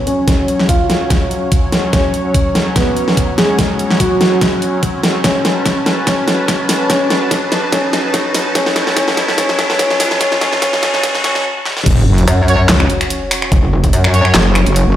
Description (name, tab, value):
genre	heavy wobble dubstep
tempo	145 BPM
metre	4/4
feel	swing 54% on 16ths, half-time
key	F# harmonic minor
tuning	A4 = 438 Hz
part	supersaw pad	sustained chords	0.0-15.0 s	F#3 to A5	-21 LUFS	equal	sidechain pumping, low-pass filter
part	riser and sub drop	sound effects	1.5-13.5 s	none	-22 LUFS	equal	none
part	felt-muted upright piano	melody	0.1-11.4 s	F#3 to E#5	-18 LUFS	equal	low-pass filter, dub echo
part	dubstep drum kit	drums	0.1-14.8 s	crash cymbal, finger snaps, handclaps, hi-hat, snare drum	-16 LUFS	equal	overdrive
part	electronic kick drum	drums	0.3-13.9 s	none	-16 LUFS	equal	overdrive
part	wobble bass	bass	11.9-15.0 s	F#1 to C#2	-12 LUFS	equal	chorus, overdrive
part	metallic wobble bass	bass	12.3-14.3 s	F#1 to F#2	-12 LUFS	equal	chorus, overdrive
part	bright brass ensemble	stabs	12.5-14.3 s	C#4 to C#5	-20 LUFS	right 2 dB	dub echo
room	moderate digital room reverb, RT60 1.0 s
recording	played on a big sound system in a bare room, large studio reverb, high-pass filter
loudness	-11 LUFS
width	side -11 dB against mid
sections	0.0-11.9 A section; 11.9-15.0 B section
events	build-up 0.0-11.9; drum fill 0.0-11.4, 11.7; filter sweep on supersaw synth 0.0-11.9; filter sweep on felt piano 0.0-11.9; filter sweep 0.0-11.9; riser 1.5-11.4; stop 11.4-11.9; drop 11.9-15.0; impact 11.9-13.5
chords	0.0 F#5